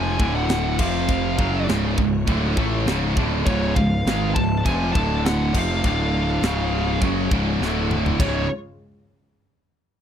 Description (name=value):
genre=heavy metal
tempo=102 BPM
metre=4/4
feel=straight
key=unclear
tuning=A4 = 440 Hz
part: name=high-gain lead guitar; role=melody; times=0.0-8.5 s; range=C#5 to A5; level=-27 LUFS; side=left 2 dB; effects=distortion, slapback echo
part: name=clear symphonic string section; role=sustained chords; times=0.0-8.5 s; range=C3 to D5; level=-34 LUFS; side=left 2 dB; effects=none
part: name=high-gain distorted guitar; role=riff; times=0.0-8.4 s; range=C#2 to A3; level=-25 LUFS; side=right 2 dB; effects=distortion
part: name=high-gain distorted guitar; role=riff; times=0.0-8.4 s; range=C#2 to A3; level=-26 LUFS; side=equal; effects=distortion
part: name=fuzz picked electric bass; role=bass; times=0.0-8.5 s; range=C#1 to A1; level=-24 LUFS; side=equal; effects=overdrive
part: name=tight metal drum kit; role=drums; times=0.2-8.3 s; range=china cymbal, crash cymbal, kick drum, snare drum, toms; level=-24 LUFS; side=equal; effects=none
room=little or no reverb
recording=dry, close 1970s-style studio recording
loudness=-19 LUFS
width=side -9 dB against mid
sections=0.0-8.2 A section; 8.2-10.0 B section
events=drum fill 7.6-8.2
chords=0.2 D5; 0.8 F5; 1.4 C#; 5.0 D5; 5.5 C#; 5.8 D5; 6.4 C#; 7.6 D5; 8.2 C#